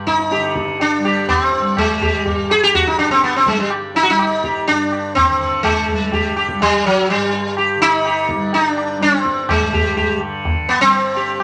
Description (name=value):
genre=indian classical, Hindustani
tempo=124 BPM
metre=4/4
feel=straight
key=unclear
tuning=A4 = 441 Hz
part: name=tanpura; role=drone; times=0.0-11.4 s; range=G2 to G3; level=-28 LUFS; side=equal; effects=none
part: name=sitar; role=melody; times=0.1-11.4 s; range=F#3 to Ab4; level=-17 LUFS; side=equal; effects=none
part: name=tabla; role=percussion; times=0.1-11.4 s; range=none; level=-27 LUFS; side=equal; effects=none
room=wet studio reverb, RT60 0.7 s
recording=none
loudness=-16 LUFS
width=mono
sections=0.0-11.4 A section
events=none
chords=none